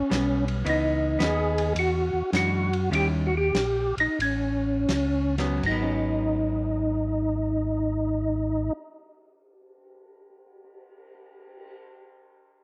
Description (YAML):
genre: soul jazz organ trio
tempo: 77-110 BPM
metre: 4/4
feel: swing 67% on 8ths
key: G# minor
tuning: A4 = 441 Hz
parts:
  - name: percussive tonewheel organ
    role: melody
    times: 0.0-8.7 s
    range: C#4 to G#4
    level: -28 LUFS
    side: equal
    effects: slow rotary speaker, chorus vibrato
  - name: mellow tonewheel organ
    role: bass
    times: 0.0-8.7 s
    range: G#1 to F#2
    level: -31 LUFS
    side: equal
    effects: chorus vibrato, slow rotary speaker
  - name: vintage hollow-body jazz guitar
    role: accompaniment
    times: 0.1-8.9 s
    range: D#3 to F#4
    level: -32 LUFS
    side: equal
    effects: none
  - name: warm soul drum kit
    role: drums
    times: 0.1-11.7 s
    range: crash cymbal, cymbal swell, hi-hat, kick drum, ride cymbal, snare drum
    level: -37 LUFS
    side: equal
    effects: none
room: light reverb, studio ambience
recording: none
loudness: -25 LUFS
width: mono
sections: 0.0-5.6 A section; 5.6-11.9 B section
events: slowing down 0.7-5.6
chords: 0.0 A9 (rootless); 0.7 C#m9; 1.8 E9; 2.9 D#7b9; 4.2 Aadd9; 5.6 G#m7